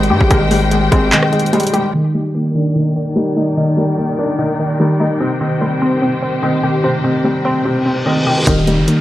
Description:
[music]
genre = hip hop, trap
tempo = 147 BPM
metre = 4/4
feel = half-time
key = Eb major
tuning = A4 = 436 Hz
[part]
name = felt-muted upright piano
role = accompaniment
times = 0.0-9.0 s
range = C3 to D4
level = -17 LUFS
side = equal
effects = low-pass filter
[part]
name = dark symphonic string section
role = sustained chords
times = 0.0-8.4 s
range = Eb3 to G5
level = -22 LUFS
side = left 3 dB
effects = low-pass filter
[part]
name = warbly dusty pluck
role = arpeggios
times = 0.0-9.0 s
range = Eb3 to G4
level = -17 LUFS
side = equal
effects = chorus, low-pass filter, analog delay
[part]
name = distorted 808-style bass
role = bass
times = 0.0-1.1, 8.5-8.9 s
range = Eb1 to Ab2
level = -17 LUFS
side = equal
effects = distortion
[part]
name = trap drum kit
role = drums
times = 0.0-1.8, 8.5-9.0 s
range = handclaps, hi-hat, kick drum, rim click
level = -17 LUFS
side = equal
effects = overdrive
[part]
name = reverse cymbal and downlifter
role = sound effects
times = 7.8-9.0 s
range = none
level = -21 LUFS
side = equal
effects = none
[sound]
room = digital ambience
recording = dry, gritty hardware recording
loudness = -13 LUFS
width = side -14 dB against mid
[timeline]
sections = 0.0-1.9 A section; 1.9-8.5 B section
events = kick muted 1.1-1.9; filter sweep 1.9-8.5; reverse cymbal 7.8-8.5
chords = 0.0 Abmaj7; 1.9 Ebmaj7; 5.2 Cm; 8.5 Eb

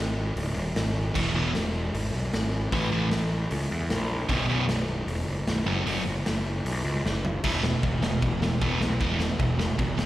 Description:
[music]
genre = punk rock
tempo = 153 BPM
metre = 4/4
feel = straight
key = unclear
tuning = A4 = 441 Hz
[part]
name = fuzz picked electric bass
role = bass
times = 0.0-10.1 s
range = B0 to E2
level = -28 LUFS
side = equal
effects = overdrive
[part]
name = raw garage drum kit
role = drums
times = 0.4-10.1 s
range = crash cymbal, hi-hat, kick drum, snare drum, toms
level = -29 LUFS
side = equal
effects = none
[part]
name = sludgy distorted guitar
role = riff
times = 1.1-10.1 s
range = B1 to A3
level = -27 LUFS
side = right 1 dB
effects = overdrive, slapback echo
[sound]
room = light reverb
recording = live gig heard through the venue's PA, recital hall reverb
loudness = -24 LUFS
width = side -14 dB against mid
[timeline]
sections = 0.0-7.4 A section; 7.4-10.1 B section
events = half time 0.0-7.4; drum fill 7.0-7.4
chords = 0.0 G#5; 1.2 E; 2.7 A5; 4.3 B5; 5.7 F#5; 7.4 E5

